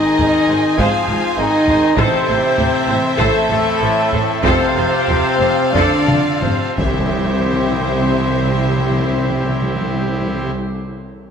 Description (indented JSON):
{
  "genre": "cinematic, epic orchestral film score",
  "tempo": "84-101 BPM",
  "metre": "4/4",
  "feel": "straight",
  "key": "unclear",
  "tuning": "A4 = 440 Hz",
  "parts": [
    { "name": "warm symphonic violin section", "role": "melody", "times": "0.0-10.5 s", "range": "E5 to Ab5", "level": "-25 LUFS", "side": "left 4 dB", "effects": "none" },
    { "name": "mellow hollow small flute group", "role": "second line", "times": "0.0-10.5 s", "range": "A4 to F5", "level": "-25 LUFS", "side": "equal", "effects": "none" },
    { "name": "rich symphonic violin section", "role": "second line", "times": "0.0-10.5 s", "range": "A4 to F5", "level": "-27 LUFS", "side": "left 2 dB", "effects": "none" },
    { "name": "mellow French horn section", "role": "sustained chords", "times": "0.0-10.5 s", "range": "A3 to F4", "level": "-19 LUFS", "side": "left 2 dB", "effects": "none" },
    { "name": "pipe organ, trumpet", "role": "sustained chords", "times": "0.0-10.5 s", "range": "C4 to C5", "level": "-25 LUFS", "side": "left 1 dB", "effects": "none" },
    { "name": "warm trombone section", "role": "sustained chords", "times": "0.0-10.5 s", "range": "A2 to G3", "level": "-25 LUFS", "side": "right 4 dB", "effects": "none" },
    { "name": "clear symphonic viola section", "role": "accompaniment", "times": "0.2-10.5 s", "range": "G4 to C5", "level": "-24 LUFS", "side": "right 1 dB", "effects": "none" },
    { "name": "rich studio double bass section", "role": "bass", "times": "0.2-10.5 s", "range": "F1 to C2", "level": "-24 LUFS", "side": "right 3 dB", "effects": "none" },
    { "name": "rich symphonic cello section", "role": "bass", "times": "0.2-10.5 s", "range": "C2 to A2", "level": "-25 LUFS", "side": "right 3 dB", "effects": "none" },
    { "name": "taiko ensemble", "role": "drums", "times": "0.2-8.2 s", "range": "none", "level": "-23 LUFS", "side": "equal", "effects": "none" },
    { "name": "tam-tam", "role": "percussion", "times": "6.8-10.5 s", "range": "none", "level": "-31 LUFS", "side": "left 1 dB", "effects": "none" },
    { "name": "timpani", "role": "percussion", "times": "6.8-10.5 s", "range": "C3", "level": "-22 LUFS", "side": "left 1 dB", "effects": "none" },
    { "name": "impact", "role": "sound effects", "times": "7.0-10.6 s", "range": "none", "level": "-35 LUFS", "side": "equal", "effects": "none" }
  ],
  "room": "wet scoring stage reverb, RT60 2.0 s",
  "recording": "none",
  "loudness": "-14 LUFS",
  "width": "side -7 dB against mid",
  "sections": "0.0-7.1 A section; 7.1-10.0 B section",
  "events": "slowing down 0.8-7.1; drum fill 6.1-7.1; band accent 7.1-7.8; impact 7.1-10.0",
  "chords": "0.0 Ab; 2.0 Am; 4.4 F; 6.8 C"
}